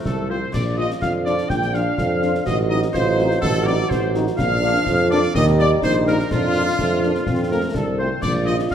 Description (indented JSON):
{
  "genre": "military-style march for wind band",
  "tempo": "125 BPM",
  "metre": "2/4",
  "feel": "straight",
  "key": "Bb major",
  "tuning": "A4 = 440 Hz",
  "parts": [
    { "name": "mellow hollow flute section", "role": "second line", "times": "0.0-8.7 s", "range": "F4 to G5", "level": "-29 LUFS", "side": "left 1 dB", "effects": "none" },
    { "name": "warm woodwind section", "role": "second line", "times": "0.0-8.7 s", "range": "F3 to G5", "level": "-28 LUFS", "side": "left 1 dB", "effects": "none" },
    { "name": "dark trombone section", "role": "sustained chords", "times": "0.0-8.7 s", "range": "F3 to Eb4", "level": "-28 LUFS", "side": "right 2 dB", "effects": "none" },
    { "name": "warm tuba", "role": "bass", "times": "0.0-8.7 s", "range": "A1 to F2", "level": "-21 LUFS", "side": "right 2 dB", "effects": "none" },
    { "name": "bright trumpet section", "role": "melody", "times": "0.1-8.7 s", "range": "F4 to G5", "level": "-26 LUFS", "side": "left 1 dB", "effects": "none" },
    { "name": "concert snare drum, concert bass drum and clash cymbals", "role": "drums", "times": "0.1-8.7 s", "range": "none", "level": "-28 LUFS", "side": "left 1 dB", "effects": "none" },
    { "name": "mellow French horn section", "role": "accompaniment", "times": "0.3-8.5 s", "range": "F3 to F4", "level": "-28 LUFS", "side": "left 4 dB", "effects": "none" },
    { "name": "warm euphonium", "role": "second line", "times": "0.5-8.7 s", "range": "D4 to G4", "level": "-26 LUFS", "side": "right 3 dB", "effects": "none" }
  ],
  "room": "wet recital hall reverb, RT60 1.5 s",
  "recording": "dark, warm production",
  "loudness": "-17 LUFS",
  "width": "side -9 dB against mid",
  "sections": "0.5-8.7 A section",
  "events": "none",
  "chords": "0.0 F; 0.5 Bb; 2.5 Adim7; 4.4 Bb; 5.3 Eb; 6.3 Bb/F; 7.3 F; 8.2 Bb"
}